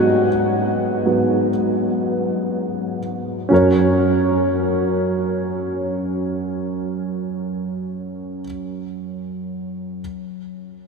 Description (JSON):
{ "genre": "pop", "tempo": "free time", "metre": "none", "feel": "none", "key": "F# major", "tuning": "A4 = 440 Hz", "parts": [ { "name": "warm concert grand piano", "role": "solo", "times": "0.0-10.0 s", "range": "F#2 to F#5", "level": "-18 LUFS", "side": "right 1 dB", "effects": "diffuse ambient delay" } ], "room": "wet huge ambient reverb, RT60 8.6 s", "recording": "dreamy mix soaked in reverb", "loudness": "-18 LUFS", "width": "side -4 dB against mid", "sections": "0.0-3.5 A section; 3.5-7.5 B section", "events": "slowing down 0.0-3.5; grand piano solo 0.0-3.5", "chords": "0.0 G#m7; 3.5 F#", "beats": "free time" }